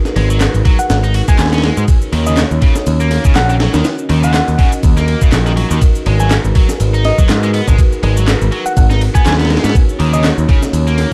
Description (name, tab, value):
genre	breakbeat, breaks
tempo	122 BPM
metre	4/4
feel	swing 56% on 16ths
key	Eb minor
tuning	A4 = 440 Hz
part	dark analog pad	sustained chords	0.0-11.1 s	Bb3 to Eb5	-24 LUFS	equal	chorus, vintage 12-bit sampler grit, sidechain pumping
part	breakbeat sampler-style drum kit	drums	0.1-11.1 s	kick drum, ride cymbal, snare drum	-16 LUFS	equal	small room ambience
part	punchy analog drum machine	drums	0.1-11.1 s	handclaps, ride cymbal, shaker	-28 LUFS	equal	overdrive, small room ambience
part	tight distorted guitar	riff	0.2-11.1 s	Db3 to Gb4	-25 LUFS	equal	distortion, tape echo
part	overdriven picked electric bass	bass	0.2-11.0 s	Ab1 to Ab2	-16 LUFS	equal	tube saturation
part	soft struck synth lead	melody	0.8-10.3 s	Eb5 to Ab5	-24 LUFS	equal	chorus, small speaker sound, tape echo
room	light reverb, digital ambience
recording	dark, warm production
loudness	-12 LUFS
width	mono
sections	0.0-11.1 A section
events	none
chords	0.0 Abm9; 1.9 Ebm7; 5.8 Abm9; 9.8 Ebm7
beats	0.41 0.90 1.39 | 1.88 2.37 2.87 3.36 | 3.85 4.34 4.83 5.33 | 5.82 6.31 6.80 7.29 | 7.78 8.28 8.77 9.26 | 9.75 10.24 10.73